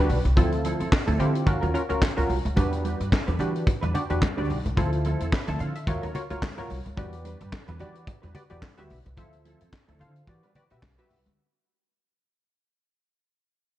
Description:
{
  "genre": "early-eighties boogie funk",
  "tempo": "109 BPM",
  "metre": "4/4",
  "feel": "swing 56% on 16ths",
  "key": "unclear",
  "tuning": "A4 = 440 Hz",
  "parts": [
    { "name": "funky polysynth comp", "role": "accompaniment", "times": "0.0-11.2 s", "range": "C4 to B5", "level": "-30 LUFS", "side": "equal", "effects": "chorus" },
    { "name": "mellow electric guitar", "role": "riff", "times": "0.0-11.3 s", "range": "F3 to B4", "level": "-34 LUFS", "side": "right 2 dB", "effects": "ensemble chorus" },
    { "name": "upright bass", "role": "bass", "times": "0.0-11.4 s", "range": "B1 to E3", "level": "-27 LUFS", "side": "equal", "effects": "none" },
    { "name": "tight funk drum kit", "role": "drums", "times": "0.1-11.4 s", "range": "handclaps, hi-hat, kick drum, snare drum", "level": "-26 LUFS", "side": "equal", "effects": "none" },
    { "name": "congas", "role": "percussion", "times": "2.6-11.4 s", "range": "none", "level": "-37 LUFS", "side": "left 1 dB", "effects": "none" }
  ],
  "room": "light reverb, small room ambience",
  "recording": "bright 1980s-style digital production, cassette tape",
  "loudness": "-23 LUFS",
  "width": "side -14 dB against mid",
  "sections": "0.0-11.4 A section",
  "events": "fade-out 0.0-11.4",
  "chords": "0.4 Dm9; 1.5 D#m9; 2.6 Em9; 4.8 Dm9; 5.9 D#m9; 7.0 Em9; 9.2 Dm9; 10.3 Em9"
}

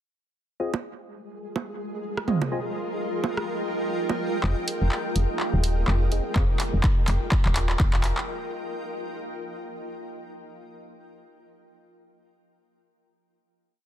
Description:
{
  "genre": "minimal techno",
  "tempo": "125 BPM",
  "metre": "4/4",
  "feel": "swing 57% on 16ths",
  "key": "F minor",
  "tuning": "A4 = 441 Hz",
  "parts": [
    { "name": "percussive organ stab", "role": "stabs", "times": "0.6-6.4 s", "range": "C4 to Eb5", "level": "-34 LUFS", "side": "left 2 dB", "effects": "analog chorus, dub echo" },
    { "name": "flickering grainy texture", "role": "texture", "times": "1.1-8.3 s", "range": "Ab3 to Ab4", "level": "-37 LUFS", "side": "equal", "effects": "built-in reverb, sidechain pumping" },
    { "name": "granular cloud pad", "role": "texture", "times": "1.9-8.3 s", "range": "F4 to G5", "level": "-32 LUFS", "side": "equal", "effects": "built-in reverb, sidechain pumping" },
    { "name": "organic electronic drum kit", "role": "percussion", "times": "0.7-4.2 s", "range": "bongos, rim click, toms", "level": "-28 LUFS", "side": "right 4 dB", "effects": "overdrive, dub echo" },
    { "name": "woody FM bass", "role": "bass", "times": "4.4-8.1 s", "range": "Eb1 to F1", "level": "-23 LUFS", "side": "equal", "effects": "tube saturation, sidechain pumping" },
    { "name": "punchy analog drum machine", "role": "drums", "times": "4.4-8.3 s", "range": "handclaps, hi-hat", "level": "-30 LUFS", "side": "equal", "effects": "none" },
    { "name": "electronic kick drum", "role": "drums", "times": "6.4-7.9 s", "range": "none", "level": "-23 LUFS", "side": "equal", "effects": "none" }
  ],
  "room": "digital ambience",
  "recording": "dense, heavily limited modern master",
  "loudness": "-23 LUFS",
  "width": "side -11 dB against mid",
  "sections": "0.6-4.4 intro; 4.4-8.3 build",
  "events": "build-up 4.4-8.3; drum fill 4.4-8.3",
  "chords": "0.6 Fm7"
}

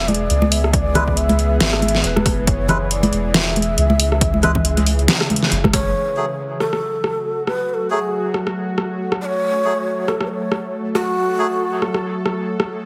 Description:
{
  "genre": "deep dubstep",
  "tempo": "138 BPM",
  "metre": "4/4",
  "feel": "swing 57% on 16ths, half-time",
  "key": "F# minor",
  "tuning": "A4 = 440 Hz",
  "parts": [
    { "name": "breathy mellow long shakuhachi", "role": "melody", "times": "0.0-12.4 s", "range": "F#4 to E5", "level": "-25 LUFS", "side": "equal", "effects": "dub echo" },
    { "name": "bowed-like drone", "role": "sustained chords", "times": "0.0-12.9 s", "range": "C#3 to A4", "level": "-28 LUFS", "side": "equal", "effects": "built-in reverb" },
    { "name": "soft dub sub bass", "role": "bass", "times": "0.0-5.9 s", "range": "E1 to C#2", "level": "-22 LUFS", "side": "equal", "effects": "none" },
    { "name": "dubstep drum kit", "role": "drums", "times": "0.1-12.7 s", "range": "hi-hat, rim click, snare drum", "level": "-22 LUFS", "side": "equal", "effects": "overdrive" },
    { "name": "congas", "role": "percussion", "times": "0.1-5.7 s", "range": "none", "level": "-24 LUFS", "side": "equal", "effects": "none" },
    { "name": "electronic kick drum", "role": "drums", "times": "0.7-5.8 s", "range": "none", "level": "-23 LUFS", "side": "equal", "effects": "overdrive" },
    { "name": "melodica", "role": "stabs", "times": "1.0-11.5 s", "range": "F#3 to B4", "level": "-28 LUFS", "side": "equal", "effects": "dub echo" }
  ],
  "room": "moderate spring reverb, RT60 1.4 s, small room reverb",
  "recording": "heavily compressed radio sound, multiband compression",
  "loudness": "-19 LUFS",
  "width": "mono",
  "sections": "0.0-6.0 A section; 6.0-12.9 B section",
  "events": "filter sweep on synth drone 6.0-12.9",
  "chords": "0.0 E; 6.0 F#m"
}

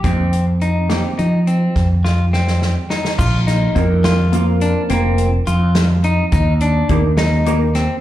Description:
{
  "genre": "progressive instrumental, band music in an uneven meter",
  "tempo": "210 BPM (eighths)",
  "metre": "11/8",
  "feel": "straight",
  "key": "unclear",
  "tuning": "A4 = 440 Hz",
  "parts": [
    { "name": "vintage hollow-body jazz guitar", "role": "accompaniment", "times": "0.0-7.7 s", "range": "Bb3 to Bb4", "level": "-21 LUFS", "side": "equal", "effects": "double-tracked left and right, slapback echo" },
    { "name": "clean electric guitar", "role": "arpeggios", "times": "0.0-8.0 s", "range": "C4 to F4", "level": "-22 LUFS", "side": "left 2 dB", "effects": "slapback echo" },
    { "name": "mellow fretless electric bass", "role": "bass", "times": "0.0-7.9 s", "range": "F1 to F3", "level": "-15 LUFS", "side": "equal", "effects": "none" },
    { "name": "natural country drum kit", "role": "drums", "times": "0.0-7.9 s", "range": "crash cymbal, hi-hat, kick drum, snare drum", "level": "-22 LUFS", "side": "equal", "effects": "none" },
    { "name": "egg shaker", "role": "percussion", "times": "3.2-7.7 s", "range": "none", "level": "-41 LUFS", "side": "right 3 dB", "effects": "none" }
  ],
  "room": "light reverb, small room ambience",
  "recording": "live gig heard through the venue's PA, club reverb",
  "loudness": "-14 LUFS",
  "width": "side -13 dB against mid",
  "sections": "0.0-3.2 A section; 3.2-8.0 B section",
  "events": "drum fill 2.0-3.2",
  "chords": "0.0 F7sus4; 3.2 Bbsus2; 4.9 Fsus4; 6.3 Eb"
}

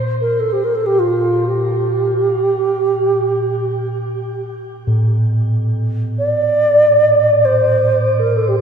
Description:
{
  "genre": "world meditative, free-time meditation music",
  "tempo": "free time",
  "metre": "none",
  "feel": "none",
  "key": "unclear",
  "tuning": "A4 = 440 Hz",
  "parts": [
    { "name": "quartz singing bowl", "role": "texture", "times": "0.0-8.6 s", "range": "A2 to Bb2", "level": "-20 LUFS", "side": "right 1 dB", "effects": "stereo widening" },
    { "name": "mellow wooden-headed alto flute", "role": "melody", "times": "0.2-8.6 s", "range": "F4 to D5", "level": "-14 LUFS", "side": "right 1 dB", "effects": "shimmer reverb, dub echo" }
  ],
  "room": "wet plate reverb, RT60 2.6 s",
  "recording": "echo-heavy mix",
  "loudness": "-13 LUFS",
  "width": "side -7 dB against mid",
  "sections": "0.0-8.6 A section",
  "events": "none",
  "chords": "none"
}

